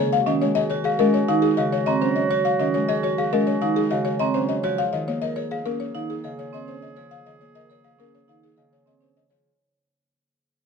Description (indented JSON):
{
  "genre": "classical, minimalist pattern music",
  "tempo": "103 BPM",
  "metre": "4/4",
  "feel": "straight",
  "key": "unclear",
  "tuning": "A4 = 445 Hz",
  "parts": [
    { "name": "buzzing marimba with soft mallets", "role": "melody", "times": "0.0-9.5 s", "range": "Ab4 to F5", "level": "-25 LUFS", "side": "left 9 dB", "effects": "none" },
    { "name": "Celtic harp", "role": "accompaniment", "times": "0.0-9.5 s", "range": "C3 to Bb3", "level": "-25 LUFS", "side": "equal", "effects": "none" },
    { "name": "vibraphone with medium mallets", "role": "arpeggios", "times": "0.0-9.5 s", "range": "C4 to Bb4", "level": "-26 LUFS", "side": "right 10 dB", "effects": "none" },
    { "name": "clear clarinet", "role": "second line", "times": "0.1-9.3 s", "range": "Gb4 to Ab4", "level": "-32 LUFS", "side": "right 6 dB", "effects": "none" },
    { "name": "celesta", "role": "arpeggios", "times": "0.9-8.8 s", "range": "Eb5 to Bb5", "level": "-30 LUFS", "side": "left 1 dB", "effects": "none" }
  ],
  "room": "moderate recital hall reverb, RT60 1.5 s",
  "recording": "close, detailed microphones",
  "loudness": "-20 LUFS",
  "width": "side -6 dB against mid",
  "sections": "0.0-9.4 A section",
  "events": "fade-out 0.0-9.4",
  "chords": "0.1 Ebm11; 4.8 Bbm7"
}